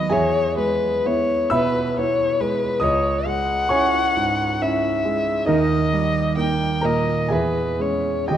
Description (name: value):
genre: classical, romantic duo for violin and grand piano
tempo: 58-71 BPM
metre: 3/4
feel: rubato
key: unclear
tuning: A4 = 440 Hz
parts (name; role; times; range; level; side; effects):
- warm violin; melody; 0.0-8.4 s; B4 to G5; -22 LUFS; left 3 dB; none
- bright concert grand piano; accompaniment; 0.0-8.4 s; C#2 to E6; -20 LUFS; right 2 dB; none
room: moderate scoring stage reverb, RT60 2.1 s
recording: dark, warm production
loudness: -18 LUFS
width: side -10 dB against mid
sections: 0.0-8.4 A section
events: none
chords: 0.1 E; 2.8 C#m; 5.5 D#; 7.3 C#m/E